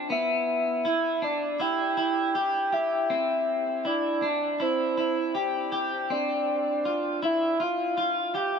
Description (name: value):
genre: dream pop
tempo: 80 BPM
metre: 4/4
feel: straight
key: unclear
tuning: A4 = 441 Hz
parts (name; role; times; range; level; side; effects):
- clean electric guitar; arpeggios; 0.0-8.6 s; B3 to G4; -27 LUFS; right 1 dB; wide subtle chorus, tape echo
- soft octave-layered synth lead; melody; 0.1-8.6 s; C5 to G5; -27 LUFS; equal; chorus, tape echo
room: moderate huge ambient reverb, RT60 7.1 s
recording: none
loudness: -24 LUFS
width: side -6 dB against mid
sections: 0.1-8.6 A section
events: none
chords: 0.1 Em7; 3.1 C; 6.1 Dm7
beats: | 0.10 0.85 1.60 2.35 | 3.10 3.85 4.60 5.35 | 6.10 6.85 7.60 8.35